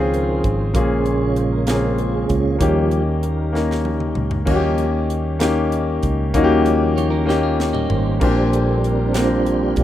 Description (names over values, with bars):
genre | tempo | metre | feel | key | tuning
slow gospel | 64 BPM (dotted quarters) | 6/8 | straight | unclear | A4 = 440 Hz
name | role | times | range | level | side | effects
warm baby grand piano | accompaniment | 0.0-9.8 s | Bb2 to Bb4 | -19 LUFS | left 3 dB | none
dark French horn section | sustained chords | 0.0-8.2 s | Db3 to C5 | -35 LUFS | equal | none
mellow tonewheel organ | sustained chords | 0.0-9.8 s | Db3 to Db5 | -24 LUFS | right 4 dB | fast rotary speaker, chorus vibrato
fingered electric bass | bass | 0.0-9.8 s | Ab1 to Eb2 | -21 LUFS | right 1 dB | none
crisp fusion drum kit | drums | 0.1-9.8 s | crash cymbal, hi-hat, kick drum, snare drum, toms | -25 LUFS | right 1 dB | none
clean electric guitar | second line | 7.0-8.2 s | G3 to Db5 | -28 LUFS | right 9 dB | slapback echo
room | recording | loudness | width
studio ambience | rough home demo mix | -16 LUFS | side -12 dB against mid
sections
0.0-4.5 A section; 4.5-8.2 B section; 8.2-9.8 C section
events
tonewheel organ solo 0.0-4.5, 8.2-9.8; drum fill 3.5-4.5, 7.3-8.2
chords
0.0 Dbmaj7; 0.8 Bbm7; 2.6 Eb7; 8.2 Bb69